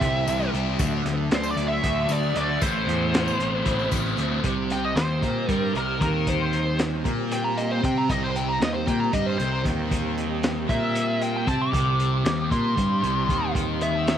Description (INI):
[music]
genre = psychedelic rock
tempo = 230 BPM (eighths)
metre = 7/8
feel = straight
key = unclear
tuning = A4 = 440 Hz
[part]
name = biting lead guitar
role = melody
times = 0.0-14.2 s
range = Bb4 to D6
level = -27 LUFS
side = equal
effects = wah, overdrive, tape echo
[part]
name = percussive tonewheel organ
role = sustained chords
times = 0.0-14.2 s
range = F#3 to B5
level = -33 LUFS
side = right 13 dB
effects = chorus vibrato, slow rotary speaker
[part]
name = thick fuzz guitar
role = riff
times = 0.0-14.2 s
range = A2 to G4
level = -27 LUFS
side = left 2 dB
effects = distortion, phaser
[part]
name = fuzz picked electric bass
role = bass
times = 0.0-14.2 s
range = A1 to C3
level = -27 LUFS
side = equal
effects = overdrive
[part]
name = crunchy breakbeat drum kit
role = drums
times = 0.0-14.2 s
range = hi-hat, kick drum, snare drum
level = -28 LUFS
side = equal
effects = none
[part]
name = tambourine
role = percussion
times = 0.3-4.2 s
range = none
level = -41 LUFS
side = left 14 dB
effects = none
[sound]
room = light reverb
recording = 1960s-style stereo with parts hard left and right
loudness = -21 LUFS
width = side -9 dB against mid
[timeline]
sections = 0.0-4.4 A section; 4.4-14.2 B section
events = lead electric guitar solo 4.4-14.2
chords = 0.0 C; 0.8 D; 2.6 Amadd9; 4.4 C5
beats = 0.01 0.27 0.53 | 0.79 1.05 1.31 1.57 1.83 2.09 2.35 | 2.61 2.88 3.14 3.40 3.66 3.92 4.18 | 4.44 4.70 4.96 5.22 5.49 5.75 6.01 | 6.27 6.53 6.79 7.05 7.31 7.57 7.83 | 8.09 8.35 8.61 8.87 9.13 9.39 9.65 | 9.91 10.18 10.44 10.69 10.95 11.21 11.47 | 11.73 11.99 12.25 12.51 12.77 13.03 13.29 | 13.55 13.81 14.07